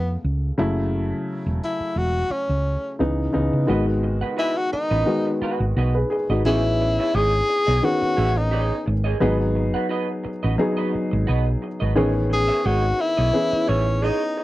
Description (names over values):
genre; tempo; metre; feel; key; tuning
soul; 87 BPM; 4/4; swing 54% on 16ths; unclear; A4 = 440 Hz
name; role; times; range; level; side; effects
breathy tenor saxophone; melody; 0.0-14.4 s; B3 to G#4; -22 LUFS; left 1 dB; none
warm baby grand piano; accompaniment; 0.0-14.4 s; C#3 to B4; -24 LUFS; left 1 dB; none
hollow-body short-scale fingered electric bass; bass; 0.0-14.1 s; E1 to C#3; -22 LUFS; equal; none
electric guitar through a small old amp; riff; 3.7-14.4 s; F#4 to F#5; -29 LUFS; right 5 dB; lush chorus
room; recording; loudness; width
little or no reverb; dry, close 1970s-style studio recording; -19 LUFS; side -16 dB against mid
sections
0.0-3.7 A section; 3.7-14.4 B section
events
none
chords
0.0 C#7b13; 0.6 F#m7; 3.0 C#m9; 3.7 G#m7; 6.4 Amaj9#11; 9.2 G#m7; 12.0 Amaj9#11